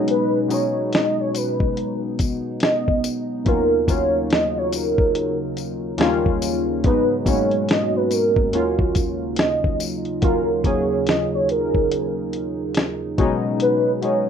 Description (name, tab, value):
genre	lo-fi hip hop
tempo	71 BPM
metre	4/4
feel	swing 61% on 16ths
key	Eb minor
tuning	A4 = 438 Hz
part	warm analog keys	accompaniment	0.0-14.3 s	Eb2 to Ab4	-23 LUFS	left 1 dB	chorus, low-pass filter
part	dark analog pad	sustained chords	0.0-14.3 s	B2 to Gb4	-28 LUFS	right 1 dB	chorus, phaser, low-pass filter
part	warm velvety synth lead	melody	0.1-14.3 s	Bb4 to D#5	-22 LUFS	right 1 dB	chorus, low-pass filter, plate reverb, tape echo
part	dusty soul sampler-style drum kit	drums	0.1-14.3 s	hi-hat, kick drum, snare drum	-21 LUFS	equal	vintage 12-bit sampler grit
part	tambourine	percussion	0.5-10.0 s	none	-33 LUFS	left 11 dB	none
room	wet small room reverb, RT60 0.5 s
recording	rough home demo mix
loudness	-18 LUFS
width	side -8 dB against mid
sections	0.0-10.2 A section; 10.2-14.3 A section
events	none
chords	0.0 B6; 3.5 Ebm7; 6.0 Eb7; 6.8 Abm7; 8.5 Ebm7; 13.2 B6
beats	| 0.08 0.93 1.77 2.62 | 3.46 4.31 5.15 6.00 | 6.84 7.69 8.53 9.38 | 10.22 11.07 11.91 12.76 | 13.61